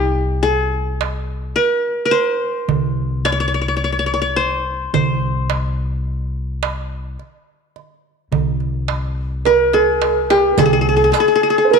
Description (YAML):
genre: Arabic maqam ensemble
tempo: 106 BPM (eighths)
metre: 10/8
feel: straight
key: C maqam huzam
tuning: A4 = 440 Hz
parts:
  - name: qanun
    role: melody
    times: 0.0-11.8 s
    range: E4-50c to D5-50c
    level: -17 LUFS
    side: left 1 dB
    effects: none
  - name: upright bass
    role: bass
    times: 0.0-11.1 s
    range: C2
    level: -22 LUFS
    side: left 1 dB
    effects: none
  - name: darbuka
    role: percussion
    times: 1.0-11.4 s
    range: none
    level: -22 LUFS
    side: right 9 dB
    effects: none
  - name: breathy mellow ney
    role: second line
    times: 9.5-11.8 s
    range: Ab4+49c to B4-40c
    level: -19 LUFS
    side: left 6 dB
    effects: none
  - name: felt-muted upright piano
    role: second line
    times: 9.5-11.8 s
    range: G4+40c to C5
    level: -17 LUFS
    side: right 10 dB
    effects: none
  - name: riq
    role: percussion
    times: 10.6-11.4 s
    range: none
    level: -28 LUFS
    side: right 12 dB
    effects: none
room: moderate echo chamber reverb, RT60 1.7 s, small room ambience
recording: 1960s-style stereo with parts hard left and right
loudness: -15 LUFS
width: side -5 dB against mid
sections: 0.0-10.6 A section; 10.6-11.8 B section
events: drum fill 9.4-10.6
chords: none